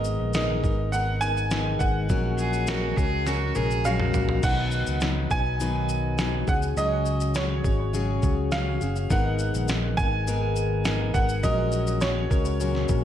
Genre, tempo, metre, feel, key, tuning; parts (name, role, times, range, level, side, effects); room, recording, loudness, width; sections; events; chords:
acoustic pop; 103 BPM; 4/4; straight; F# major; A4 = 442 Hz
bright upright piano; melody; 0.0-13.0 s; C#5 to G#5; -30 LUFS; right 3 dB; tape echo
picked plugged-in steel-string acoustic guitar; accompaniment; 0.0-13.0 s; G#2 to B4; -29 LUFS; left 5 dB
fingered electric bass; bass; 0.0-13.0 s; F#1 to C#2; -27 LUFS; equal
dusty soul sampler-style drum kit; drums; 0.0-13.0 s; crash cymbal, kick drum, shaker, snare drum, toms; -28 LUFS; equal
rich cello; second line; 2.4-4.4 s; F#4 to G#4; -30 LUFS; right 3 dB
moderate plate reverb, RT60 1.1 s, digital ambience; dreamy mix soaked in reverb; -22 LUFS; side -10 dB against mid
0.0-4.4 A section; 4.4-13.0 B section
drum fill 3.3-4.4
0.0 G#madd9; 2.1 F#add9/A#; 4.4 B; 6.5 C#sus4; 9.1 G#madd9; 11.4 F#add9/A#